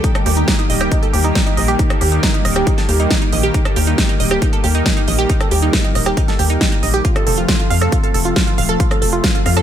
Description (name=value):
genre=uplifting trance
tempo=137 BPM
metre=4/4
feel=straight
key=unclear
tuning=A4 = 441 Hz
part: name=lush unison pad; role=sustained chords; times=0.0-9.6 s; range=C3 to G4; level=-21 LUFS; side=left 1 dB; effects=chorus, sidechain pumping
part: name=wide unison pluck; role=arpeggios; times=0.0-9.6 s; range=Eb4 to F5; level=-20 LUFS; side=right 4 dB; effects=sidechain pumping, digital delay
part: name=big-room dance drum kit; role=drums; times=0.0-9.6 s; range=hi-hat, rim click, snare drum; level=-20 LUFS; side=right 1 dB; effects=none
part: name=electronic kick drum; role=drums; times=0.0-9.3 s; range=none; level=-17 LUFS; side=left 1 dB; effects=none
part: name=tight sequencer bass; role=bass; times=0.3-9.6 s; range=Eb1 to F2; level=-18 LUFS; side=left 1 dB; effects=sidechain pumping
room=light reverb, digital ambience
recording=none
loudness=-13 LUFS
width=side -10 dB against mid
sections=0.0-9.6 A section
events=none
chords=0.0 Eb; 7.0 F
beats=| 0.04 0.48 0.92 1.35 | 1.79 2.23 2.67 3.11 | 3.54 3.98 4.42 4.86 | 5.30 5.73 6.17 6.61 | 7.05 7.49 7.92 8.36 | 8.80 9.24